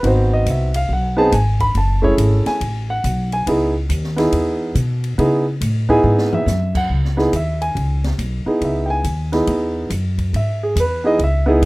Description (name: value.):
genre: jazz, small-group swing and bop.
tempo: 140 BPM.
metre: 4/4.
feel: swing 65% on 8ths.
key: C# minor.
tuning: A4 = 440 Hz.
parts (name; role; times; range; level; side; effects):
warm grand piano; accompaniment; 0.0-11.6 s; A3 to B5; -18 LUFS; right 1 dB; none.
upright bass; bass; 0.0-11.7 s; F#1 to C#3; -18 LUFS; equal; none.
open jazz drum kit; drums; 0.0-11.7 s; crash cymbal, hi-hat, kick drum, ride cymbal, snare drum, toms; -29 LUFS; left 1 dB; none.
room: little or no reverb.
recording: rough home demo mix.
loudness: -16 LUFS.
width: side -22 dB against mid.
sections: 0.0-6.9 A section; 6.9-11.7 A section.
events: drum fill 6.0-6.5.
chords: 0.0 G#7#9; 1.7 F#m7; 3.5 C#m7.